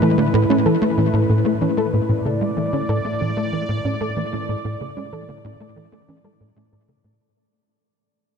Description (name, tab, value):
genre	ambient, sequencer-driven space music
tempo	94 BPM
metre	4/4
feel	straight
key	A major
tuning	A4 = 440 Hz
part	sweeping resonant pad	sustained chords	0.0-7.2 s	A2 to D5	-24 LUFS	equal	chorus
part	soft round pluck	arpeggios	0.0-7.1 s	A2 to A4	-24 LUFS	moving between left 3 dB and right 5 dB	chorus, auto-pan, ping-pong delay
part	tight sequencer bass	riff	0.0-7.2 s	A2 to A3	-21 LUFS	equal	ensemble chorus, ping-pong delay
room	moderate huge ambient reverb, RT60 8.1 s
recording	dark, warm production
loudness	-18 LUFS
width	side -6 dB against mid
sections	0.0-7.2 A section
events	fade-out 0.4-7.2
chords	0.0 Asus2